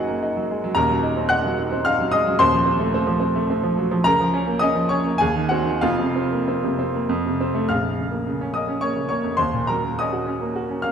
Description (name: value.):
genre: classical, romantic character piece for solo piano.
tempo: 92-115 BPM.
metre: 3/4.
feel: rubato.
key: Bb minor.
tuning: A4 = 441 Hz.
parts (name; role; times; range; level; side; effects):
clear baby grand piano; solo; 0.0-10.9 s; Eb1 to Gb6; -19 LUFS; equal; none.
room: wet recital hall reverb, RT60 1.5 s.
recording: dark, warm production.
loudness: -19 LUFS.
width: side -7 dB against mid.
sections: 0.0-7.7 A section; 7.7-10.9 B section.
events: none.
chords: 0.0 Ebm/Gb; 0.8 Cm7b5/Eb; 2.4 F7/Eb; 4.0 Bbm/Db; 5.2 Cdim/Eb; 5.8 Fsus4; 7.1 F; 7.7 Bbm; 9.4 Ebm7.